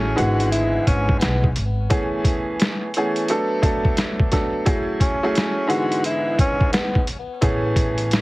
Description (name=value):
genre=hip hop, boom-bap hip-hop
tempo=87 BPM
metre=4/4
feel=swing 62% on 16ths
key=unclear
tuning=A4 = 442 Hz
part: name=breathy tenor saxophone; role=melody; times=0.0-7.0 s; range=B3 to F#4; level=-24 LUFS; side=equal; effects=high-pass filter, low-pass filter, ping-pong delay
part: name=clear upright piano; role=accompaniment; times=0.0-8.2 s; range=G#2 to A4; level=-22 LUFS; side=right 1 dB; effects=cassette tape, high-pass filter, low-pass filter
part: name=upright bass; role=bass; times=0.0-1.8, 7.4-8.2 s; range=G#1 to B1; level=-22 LUFS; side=equal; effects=none
part: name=trip hop sampler-style drum kit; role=drums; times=0.2-8.2 s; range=hi-hat, kick drum, snare drum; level=-20 LUFS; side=equal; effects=none
room=light reverb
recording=heavily compressed radio sound, multiband compression, vinyl crackle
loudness=-18 LUFS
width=side -21 dB against mid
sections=0.0-8.2 A section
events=none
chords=0.2 E7/G#; 1.9 Amaj9; 3.3 Bm7; 4.7 F#m9; 5.7 E7/G#; 7.4 Amaj9